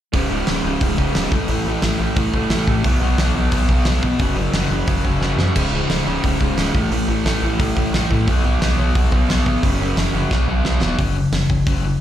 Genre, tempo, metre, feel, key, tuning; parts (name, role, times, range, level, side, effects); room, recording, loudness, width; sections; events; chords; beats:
punk rock; 177 BPM; 4/4; straight; C# minor; A4 = 440 Hz
overdriven semi-hollow guitar; riff; 0.1-12.0 s; C#2 to B3; -22 LUFS; left 8 dB; slapback echo
raw garage guitar; riff; 0.1-11.0 s; C#2 to B3; -24 LUFS; right 9 dB; overdrive, slapback echo
metallic FM bass; bass; 0.1-12.0 s; C#1 to B2; -21 LUFS; equal
big rock drum kit; drums; 0.1-11.7 s; crash cymbal, hi-hat, kick drum, snare drum; -21 LUFS; equal
small room reverb; live gig heard through the venue's PA, club reverb; -16 LUFS; side -11 dB against mid
0.1-11.0 A section; 11.0-12.0 B section
drum fill 5.2-5.6, 10.3-11.0
0.1 C#5; 1.3 A5; 2.8 B5; 4.2 F#5; 5.6 C#5; 6.7 A5; 8.3 B5; 9.6 F#5; 10.3 B5; 11.0 F#5
| 0.13 0.47 0.81 1.15 | 1.49 1.83 2.17 2.50 | 2.84 3.18 3.52 3.86 | 4.20 4.54 4.88 5.22 | 5.56 5.89 6.24 6.57 | 6.91 7.25 7.59 7.93 | 8.27 8.61 8.95 9.29 | 9.63 9.97 10.31 10.65 | 10.99 11.33 11.67